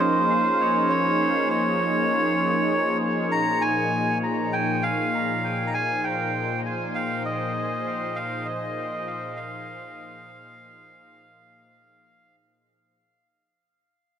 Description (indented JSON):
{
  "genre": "ambient",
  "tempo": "99 BPM",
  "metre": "4/4",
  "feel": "swing 59% on 16ths",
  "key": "unclear",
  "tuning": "A4 = 439 Hz",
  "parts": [
    { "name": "melodica", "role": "melody", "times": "0.0-12.4 s", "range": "C5 to Bb5", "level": "-24 LUFS", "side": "equal", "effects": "dub echo" },
    { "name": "warm analog pad", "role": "sustained chords", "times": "0.0-13.0 s", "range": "Bb2 to C5", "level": "-26 LUFS", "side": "equal", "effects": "chorus" }
  ],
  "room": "moderate plate reverb, RT60 3.0 s",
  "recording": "echo-heavy mix",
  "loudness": "-22 LUFS",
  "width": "side -9 dB against mid",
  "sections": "0.0-13.0 A section",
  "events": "fade-out 3.3-13.0",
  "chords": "0.0 Bbm7; 3.3 Fm7/Bb"
}